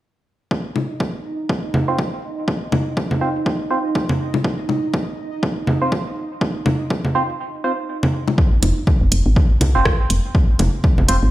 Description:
minimal techno; 122 BPM; 4/4; swing 58% on 16ths; A4 = 440 Hz
electronic kick drum; drums; 0.5-11.0 s; -18 LUFS; equal; high-pass filter on kick
pulsing gated texture; texture; 0.5-8.4 s; Eb4 to Eb5; -28 LUFS; right 3 dB; chorus, built-in reverb, sidechain pumping
bongos and congas; percussion; 0.8-11.1 s; -21 LUFS; left 1 dB; dub echo
percussive organ stab; stabs; 1.9-11.2 s; C4 to C5; -23 LUFS; right 2 dB; chorus, dub echo
woody FM bass; bass; 8.6-11.3 s; F1 to C2; -16 LUFS; equal; sidechain pumping
punchy analog drum machine; drums; 8.6-11.2 s; hi-hat, rim click; -22 LUFS; right 2 dB
light reverb; played on a big sound system in a bare room, stone room reverb; -17 LUFS; side -15 dB against mid
0.5-8.4 A section; 8.4-11.3 B section
kick drops out 7.4-8.4
0.5 F5

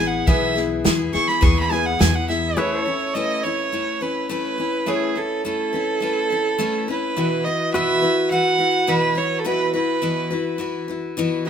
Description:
honky-tonk and classic country; 105 BPM; 4/4; straight; A4 = 439 Hz
clear fiddle; second line; 0.0-11.5 s; G#4 to C#6; -22 LUFS; right 4 dB
bright upright piano; accompaniment; 0.0-11.5 s; E4 to C#5; -31 LUFS; equal
picked steel-string acoustic guitar; accompaniment; 0.0-11.5 s; B2 to B4; -24 LUFS; left 4 dB
pedal steel guitar; sustained chords; 0.0-11.5 s; F#4 to E5; -26 LUFS; right 1 dB
upright bass; bass; 0.0-2.6 s; A1 to E2; -25 LUFS; left 1 dB
natural country drum kit; drums; 0.3-2.4 s; hi-hat, kick drum, snare drum; -20 LUFS; right 1 dB
light reverb; minimal, uncompressed stereo recording, faint mains hum; -18 LUFS; side -8 dB against mid
0.0-2.6 A section; 2.6-11.5 B section
fiddle solo 0.0-2.6, 2.6-11.5
0.0 E; 2.6 Aadd9; 7.2 Bsus4

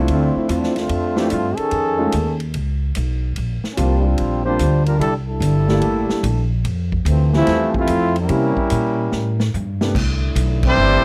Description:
jazz, big band swing; 146 BPM; 4/4; swing 66% on 8ths; F major; A4 = 440 Hz
warm concert grand piano; accompaniment; 0.0-9.9 s; C3 to G4; -24 LUFS; equal
upright bass; bass; 0.0-11.0 s; G1 to C3; -22 LUFS; equal
clear trombone section; second line; 0.1-11.0 s; Eb3 to C5; -23 LUFS; equal
swinging big-band drum kit; drums; 0.1-10.7 s; crash cymbal, hi-hat, kick drum, ride cymbal, snare drum, toms; -29 LUFS; equal
mellow trombone section; sustained chords; 9.9-11.0 s; D3 to E4; -30 LUFS; equal
clear trumpet section; melody; 10.7-11.0 s; G3 to C5; -17 LUFS; equal
small room ambience; dry, close 1970s-style studio recording; -19 LUFS; mono
0.0-9.9 A section; 9.9-11.0 B section
trombone section solo 0.0-9.9; drum fill 9.1-9.9; band accent 10.6
0.1 Dm7; 1.7 F7alt; 3.4 Bb69; 5.0 C13; 6.7 Fmaj7; 8.3 C7b9; 9.9 Cmaj13

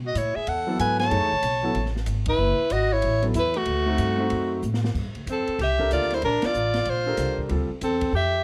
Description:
modal jazz; 188 BPM; 4/4; swing 63% on 8ths; G dorian from 4.9 s; A4 = 440 Hz
upright bass; bass; 0.0-8.4 s; F#1 to B2; -30 LUFS; equal
breathy soprano saxophone; melody; 0.1-8.4 s; F#4 to A5; -27 LUFS; equal; plate reverb
clear alto saxophone; second line; 0.1-8.4 s; A3 to C#5; -31 LUFS; equal
open jazz drum kit; drums; 0.2-8.1 s; crash cymbal, hi-hat, kick drum, ride cymbal, snare drum; -38 LUFS; equal
warm concert grand piano; accompaniment; 0.7-7.7 s; F#3 to C#5; -30 LUFS; equal
light reverb; -24 LUFS; mono
0.0-4.9 A section; 4.9-8.4 B section
band accent 2.2, 6.4; drum fill 4.6-4.9
0.0 B9sus4; 3.7 D7b9; 4.9 Gm11

